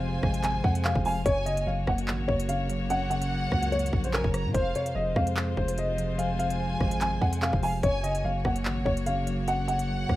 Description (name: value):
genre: hip hop, drill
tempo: 146 BPM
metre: 4/4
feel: half-time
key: unclear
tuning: A4 = 440 Hz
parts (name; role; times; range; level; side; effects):
- dark baby grand piano; melody; 0.0-10.2 s; Bb4 to Ab5; -30 LUFS; left 1 dB; tape echo
- warm studio violin section; second line; 0.0-10.2 s; F5 to Bb5; -36 LUFS; right 1 dB; tape echo
- mellow tine electric piano; accompaniment; 0.0-10.2 s; F2 to Bb3; -32 LUFS; equal; medium stereo tremolo
- warm chamber string section; sustained chords; 0.0-10.2 s; C3 to Db5; -36 LUFS; equal; none
- long sustained 808-style bass; bass; 0.0-10.2 s; F1 to Bb2; -31 LUFS; equal; none
- drill drum kit; drums; 0.2-10.2 s; handclaps, hi-hat, kick drum, rim click; -30 LUFS; equal; none
room: studio reverb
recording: rough home demo mix, vinyl crackle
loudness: -25 LUFS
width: side -15 dB against mid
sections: 0.0-10.2 A section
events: none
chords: 0.0 Fm; 1.3 Gb; 4.5 Fm; 7.8 Gb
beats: 0.02 0.43 0.85 | 1.26 1.67 2.08 2.49 | 2.90 3.31 3.72 4.13 | 4.54 4.96 5.37 5.78 | 6.19 6.60 7.01 7.42 | 7.83 8.24 8.65 9.07 | 9.48 9.89